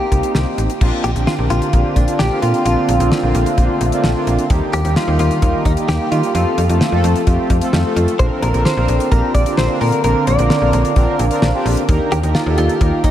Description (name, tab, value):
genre	synth-pop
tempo	130 BPM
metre	4/4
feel	straight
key	unclear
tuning	A4 = 438 Hz
part	direct-recorded clean electric guitar	melody	0.0-13.1 s	D4 to D5	-20 LUFS	left 1 dB	analog chorus, analog delay
part	analog synth brass	accompaniment	0.0-13.1 s	G3 to Bb4	-21 LUFS	right 1 dB	chorus
part	slap-like FM bass	bass	0.1-13.1 s	A1 to Eb3	-18 LUFS	equal	none
part	damped 70s drum kit	drums	0.1-13.1 s	crash cymbal, hi-hat, kick drum, snare drum	-20 LUFS	equal	none
part	sweeping resonant pad	sustained chords	1.0-13.1 s	D3 to A4	-22 LUFS	equal	chorus, phaser
room	moderate huge ambient reverb, RT60 8.2 s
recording	dreamy mix soaked in reverb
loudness	-13 LUFS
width	side -11 dB against mid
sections	0.8-13.1 A section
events	none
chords	0.0 Cm7; 0.8 Bbadd9; 4.5 Eb; 6.3 F; 8.2 Bbadd9; 11.9 Eb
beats	0.35 | 0.81 1.27 1.73 2.19 | 2.66 3.12 3.58 4.04 | 4.50 4.96 5.42 5.89 | 6.35 6.81 7.27 7.73 | 8.19 8.66 9.12 9.58 | 10.04 10.50 10.96 11.43 | 11.89 12.35 12.81